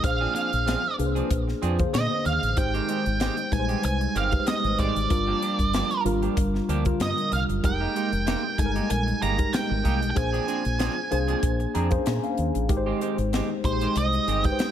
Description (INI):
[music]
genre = polished 1980s jazz-funk pop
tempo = 95 BPM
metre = 4/4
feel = swing 54% on 16ths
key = unclear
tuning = A4 = 440 Hz
[part]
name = octave-fuzz lead guitar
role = melody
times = 0.0-14.7 s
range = C5 to Bb5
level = -28 LUFS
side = right 4 dB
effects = distortion, digital delay
[part]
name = tine electric piano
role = accompaniment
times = 0.0-14.7 s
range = D3 to Bb5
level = -28 LUFS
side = left 2 dB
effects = analog chorus
[part]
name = semi-hollow electric guitar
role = riff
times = 0.0-14.6 s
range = Eb3 to Ab4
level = -33 LUFS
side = right 7 dB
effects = wide subtle chorus
[part]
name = deep dub fingered electric bass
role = bass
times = 0.0-14.5 s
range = F1 to Bb2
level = -27 LUFS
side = equal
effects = none
[part]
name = tight funk drum kit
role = drums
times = 0.0-14.7 s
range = hi-hat, kick drum, snare drum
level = -28 LUFS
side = left 1 dB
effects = gated reverb
[sound]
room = studio reverb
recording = none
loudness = -22 LUFS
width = side -10 dB against mid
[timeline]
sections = 0.0-14.7 A section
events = tine electric piano fill 11.4-12.7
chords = 0.0 Bb9; 2.6 Abmaj7; 5.1 Gm7; 7.6 Fm11; 10.2 Bb9; 12.7 Abmaj7